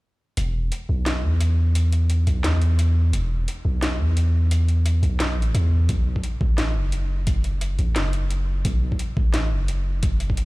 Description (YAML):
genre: half-time drum and bass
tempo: 174 BPM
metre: 4/4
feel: swing 56% on 16ths, half-time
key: unclear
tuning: A4 = 440 Hz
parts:
  - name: long sustained 808-style bass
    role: bass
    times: 0.4-10.4 s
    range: E1 to E2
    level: -20 LUFS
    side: equal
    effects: none
  - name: drum and bass drum kit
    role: drums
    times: 0.4-10.4 s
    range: hi-hat, snare drum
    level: -30 LUFS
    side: equal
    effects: none
  - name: electronic kick drum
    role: drums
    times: 5.9-10.4 s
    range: none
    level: -22 LUFS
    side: equal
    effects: overdrive
room: little or no reverb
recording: played on a big sound system in a bare room, large studio reverb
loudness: -19 LUFS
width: side -21 dB against mid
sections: 0.4-10.4 A section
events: none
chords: none